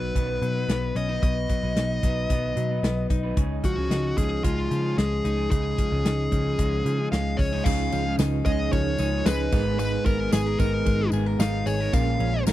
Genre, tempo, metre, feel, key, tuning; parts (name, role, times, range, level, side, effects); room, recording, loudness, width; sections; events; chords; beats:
jangly indie pop; 112 BPM; 4/4; straight; A4 = 440 Hz
dark smooth lead guitar; melody; 0.0-12.4 s; E#4 to E#5; -29 LUFS; equal; overdrive, tape echo
electric guitar through a small old amp; accompaniment; 0.0-12.5 s; G#2 to B4; -33 LUFS; right 6 dB
direct-recorded clean electric guitar; arpeggios; 0.0-12.5 s; G#2 to A#4; -30 LUFS; left 5 dB
vintage muted picked electric bass; bass; 0.0-12.5 s; G#1 to C#3; -27 LUFS; equal
modern studio drum kit; drums; 0.2-12.5 s; crash cymbal, hi-hat, kick drum, ride cymbal, snare drum; -25 LUFS; equal
reed electric piano; accompaniment; 7.7-12.5 s; B3 to C#5; -32 LUFS; right 13 dB; fast tremolo
tambourine; percussion; 7.7-12.5 s; -42 LUFS; left 27 dB
little or no reverb; dry, close 1970s-style studio recording; -22 LUFS; side -14 dB against mid
0.0-7.7 A section; 7.7-12.5 B section
0.0 B; 3.4 C#add9; 9.5 G#madd9; 11.9 A#m7
0.15 0.69 | 1.23 1.76 2.30 2.83 | 3.37 3.91 4.44 4.98 | 5.52 6.05 6.59 7.12 | 7.66 8.19 8.73 9.26 | 9.80 10.33 10.87 11.40 | 11.93 12.47